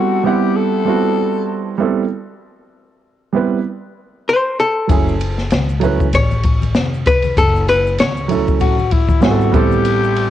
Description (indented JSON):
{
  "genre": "hip hop, jazz-hop",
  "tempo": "97 BPM",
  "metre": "4/4",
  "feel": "swing 57% on 16ths",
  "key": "unclear",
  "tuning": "A4 = 440 Hz",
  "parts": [
    { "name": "growling tenor saxophone", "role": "second line", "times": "0.0-1.8, 8.6-10.3 s", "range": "E4 to A4", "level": "-19 LUFS", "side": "left 8 dB", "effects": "cassette tape" },
    { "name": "dark grand piano", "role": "accompaniment", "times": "0.0-10.3 s", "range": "F#3 to F#5", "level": "-17 LUFS", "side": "right 6 dB", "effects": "cassette tape" },
    { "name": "archtop guitar, miked and amplified", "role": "melody", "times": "4.3-8.9 s", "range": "A4 to C#5", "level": "-17 LUFS", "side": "left 2 dB", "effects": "none" },
    { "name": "upright bass", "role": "bass", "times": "4.9-10.3 s", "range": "E#1 to C#2", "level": "-19 LUFS", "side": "left 1 dB", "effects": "none" },
    { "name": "open jazz drum kit", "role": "drums", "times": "4.9-10.3 s", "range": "hi-hat, kick drum, ride cymbal, snare drum", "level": "-17 LUFS", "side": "left 1 dB", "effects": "cassette tape" },
    { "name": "maracas and congas", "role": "percussion", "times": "4.9-10.3 s", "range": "none", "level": "-29 LUFS", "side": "left 10 dB", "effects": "none" }
  ],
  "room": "light reverb, small room ambience",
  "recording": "home recording on cassette",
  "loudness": "-13 LUFS",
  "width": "side -11 dB against mid",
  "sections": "0.0-10.3 A section",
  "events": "none",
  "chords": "0.0 Am9; 4.9 F#m9; 9.5 Am9"
}